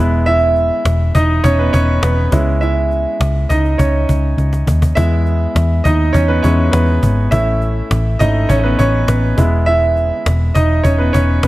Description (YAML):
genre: piano-driven pop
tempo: 102 BPM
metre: 4/4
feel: straight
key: E major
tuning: A4 = 440 Hz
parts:
  - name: clear concert grand piano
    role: accompaniment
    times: 0.0-11.5 s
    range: G#3 to E5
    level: -16 LUFS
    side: right 1 dB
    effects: none
  - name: vintage muted picked electric bass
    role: bass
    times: 0.0-11.5 s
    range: E1 to E2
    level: -14 LUFS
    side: equal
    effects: none
  - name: cajon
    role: drums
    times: 0.3-11.5 s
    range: none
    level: -19 LUFS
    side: equal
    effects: none
room: studio ambience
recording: none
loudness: -12 LUFS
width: side -17 dB against mid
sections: 0.0-11.5 A section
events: grand piano solo 0.0-11.5; drum fill 4.4-5.0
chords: 0.0 E; 2.3 C#m; 5.0 E; 7.3 A; 9.4 E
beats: | 0.27 0.85 1.44 2.03 | 2.62 3.21 3.79 4.38 | 4.97 5.56 6.14 6.73 | 7.32 7.91 8.50 9.08 | 9.67 10.26 10.85 11.44